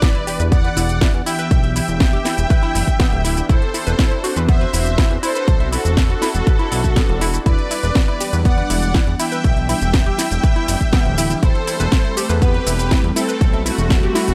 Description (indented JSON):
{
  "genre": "progressive house",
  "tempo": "121 BPM",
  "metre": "4/4",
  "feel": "straight",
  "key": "E minor",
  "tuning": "A4 = 441 Hz",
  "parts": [
    { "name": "soft supersaw", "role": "melody", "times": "0.0-14.3 s", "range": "A3 to G5", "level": "-27 LUFS", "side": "equal", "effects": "vintage 12-bit sampler grit, tape echo" },
    { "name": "airy dreamy lead", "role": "second line", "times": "0.0-14.3 s", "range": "F#4 to G5", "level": "-31 LUFS", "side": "equal", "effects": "chorus, sidechain pumping, tape echo" },
    { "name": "evolving wavetable pad", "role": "sustained chords", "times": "0.0-14.3 s", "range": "E3 to G4", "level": "-30 LUFS", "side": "equal", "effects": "ensemble chorus, built-in reverb, sidechain pumping" },
    { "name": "unison pluck", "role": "arpeggios", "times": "0.0-14.2 s", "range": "B3 to E5", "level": "-28 LUFS", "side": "equal", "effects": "sidechain pumping, tape echo" },
    { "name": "electronic kick drum", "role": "drums", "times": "0.0-14.0 s", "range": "none", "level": "-18 LUFS", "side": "equal", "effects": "none" },
    { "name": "house drum kit", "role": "drums", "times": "0.0-14.3 s", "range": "hi-hat, ride cymbal, shaker, snare drum", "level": "-26 LUFS", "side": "equal", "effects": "none" },
    { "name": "impact", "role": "sound effects", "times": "0.0-1.5 s", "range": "none", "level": "-40 LUFS", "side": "equal", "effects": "none" },
    { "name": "fat analog bass", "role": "bass", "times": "0.4-14.3 s", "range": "D1 to E2", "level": "-22 LUFS", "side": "equal", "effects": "sidechain pumping" }
  ],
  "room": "digital ambience",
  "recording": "none",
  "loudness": "-17 LUFS",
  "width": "mono",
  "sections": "0.0-14.3 A section",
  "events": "impact 0.0-1.5",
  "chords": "0.0 Em7; 3.5 D7/E; 7.5 Em7; 11.4 Am7/E"
}